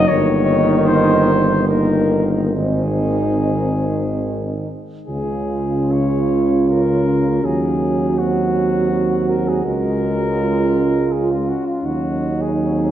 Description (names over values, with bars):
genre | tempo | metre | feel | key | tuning
classical, hymn-like piece for brass band | 67-84 BPM | 3/4 | rubato | Db major | A4 = 439 Hz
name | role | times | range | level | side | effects
mellow flugelhorn | melody | 0.0-12.9 s | F4 to Db5 | -24 LUFS | left 4 dB | none
warm French horn section | second line | 0.0-12.9 s | Eb4 to Gb4 | -21 LUFS | right 4 dB | none
clear trombone | accompaniment | 0.0-12.9 s | Db3 to Ab3 | -24 LUFS | right 3 dB | none
clear tuba | bass | 0.0-12.9 s | G1 to Eb2 | -21 LUFS | equal | none
dark euphonium | accompaniment | 0.1-12.9 s | Bb3 to Db4 | -23 LUFS | left 2 dB | none
room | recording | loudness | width
wet church reverb, RT60 2.9 s | worn, warbling old tape, cassette tape, warbly pitch drift | -15 LUFS | side -11 dB against mid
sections
0.0-5.1 A section; 5.1-12.9 B section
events
none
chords
0.1 Eb7/G; 2.6 Ab; 5.1 Db; 7.4 Cdim/Eb; 9.7 Db; 11.8 Cdim/Eb